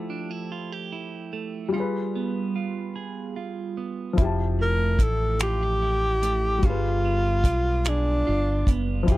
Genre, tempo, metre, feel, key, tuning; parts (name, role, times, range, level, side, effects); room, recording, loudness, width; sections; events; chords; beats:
slow six-eight R&B; 49 BPM (dotted quarters); 6/8; straight; A4 = 439 Hz
clean electric guitar; second line; 0.0-9.2 s; F3 to Ab4; -32 LUFS; right 7 dB; phaser
dark baby grand piano; accompaniment; 0.0-9.2 s; F3 to A5; -31 LUFS; left 5 dB
deep dub fingered electric bass; bass; 4.2-9.2 s; F1 to B1; -25 LUFS; equal
damped 70s drum kit; drums; 4.2-9.2 s; finger snaps, hi-hat, kick drum; -20 LUFS; equal
breathy tenor saxophone; melody; 4.6-8.8 s; D4 to Bb4; -25 LUFS; equal
little or no reverb; dry, close 1970s-style studio recording; -23 LUFS; side -17 dB against mid
0.0-9.2 A section
0.0 Fmaj9; 1.7 G7b9; 4.2 Fmaj9; 6.6 G7b9
0.51 | 1.73 2.96 | 4.18 5.41 | 6.63 7.86 | 9.08